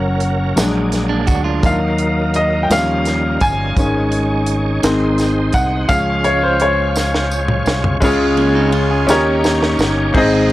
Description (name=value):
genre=slow gospel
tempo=56 BPM (dotted quarters)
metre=6/8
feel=straight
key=Db major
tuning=A4 = 440 Hz
part: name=clear grand piano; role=accompaniment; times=0.0-10.5 s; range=Ab2 to Ab5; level=-16 LUFS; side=left 1 dB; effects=none
part: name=bright tonewheel organ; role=sustained chords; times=0.0-10.5 s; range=Gb3 to Db5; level=-24 LUFS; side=right 3 dB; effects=slow rotary speaker, overdrive, chorus vibrato
part: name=fingered electric bass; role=bass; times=0.0-10.5 s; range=Gb1 to Eb2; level=-20 LUFS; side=equal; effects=none
part: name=tight funk drum kit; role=drums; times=0.2-10.5 s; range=crash cymbal, hi-hat, kick drum, ride cymbal, snare drum, toms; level=-20 LUFS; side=right 1 dB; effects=none
part: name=tambourine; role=percussion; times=0.6-10.1 s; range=none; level=-30 LUFS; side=equal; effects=none
part: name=clean electric guitar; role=second line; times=1.1-1.8, 8.4-9.2 s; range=Bb3 to Ab4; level=-22 LUFS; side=right 6 dB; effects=none
room=little or no reverb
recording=dry, gritty hardware recording, cassette tape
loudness=-13 LUFS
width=side -16 dB against mid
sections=0.0-8.0 A section; 8.0-10.1 B section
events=grand piano solo 0.0-8.0; drum fill 7.0-8.0, 9.1-10.1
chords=0.0 Gb; 0.6 Bb7b13; 1.6 Ebm; 2.7 Eb7; 3.8 Absus4; 4.8 Ab; 5.9 Db; 9.1 Eb7